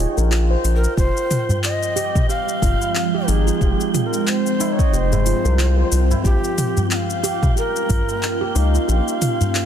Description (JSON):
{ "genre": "organic downtempo", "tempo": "91 BPM", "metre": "4/4", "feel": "swing 57% on 16ths", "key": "F minor", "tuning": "A4 = 435 Hz", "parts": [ { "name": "handpan", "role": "arpeggios", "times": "0.0-9.3 s", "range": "Eb4 to Eb5", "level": "-25 LUFS", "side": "right 3 dB", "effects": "digital delay" }, { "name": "round analog bass", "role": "bass", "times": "0.0-9.0 s", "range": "F1 to Db2", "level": "-18 LUFS", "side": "equal", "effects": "sidechain pumping" }, { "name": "wind-like tuned noise texture", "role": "texture", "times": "0.0-9.7 s", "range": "G5", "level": "-34 LUFS", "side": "equal", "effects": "built-in reverb" }, { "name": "deep house drum kit", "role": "drums", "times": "0.2-9.7 s", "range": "handclaps, hi-hat, shaker, toms", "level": "-25 LUFS", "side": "left 1 dB", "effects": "none" }, { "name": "mellow Native American-style cedar flute", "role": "melody", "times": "0.8-9.7 s", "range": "G4 to G5", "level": "-25 LUFS", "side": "left 1 dB", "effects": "digital delay" }, { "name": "ethereal airy pad", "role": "sustained chords", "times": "1.9-9.7 s", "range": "F3 to G5", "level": "-25 LUFS", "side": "right 1 dB", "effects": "ensemble chorus, built-in reverb, phaser, sidechain pumping" }, { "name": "electronic kick drum", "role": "drums", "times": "1.0-8.1 s", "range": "none", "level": "-19 LUFS", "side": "equal", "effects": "none" }, { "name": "tabla", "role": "percussion", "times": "1.3-9.5 s", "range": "none", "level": "-25 LUFS", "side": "equal", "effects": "none" } ], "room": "light reverb", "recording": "dense, heavily limited modern master", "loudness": "-16 LUFS", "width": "side -9 dB against mid", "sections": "0.0-9.7 A section", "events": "kick drops out 8.9-9.7", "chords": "0.0 N.C.; 1.0 Fmadd9; 6.3 Bbm" }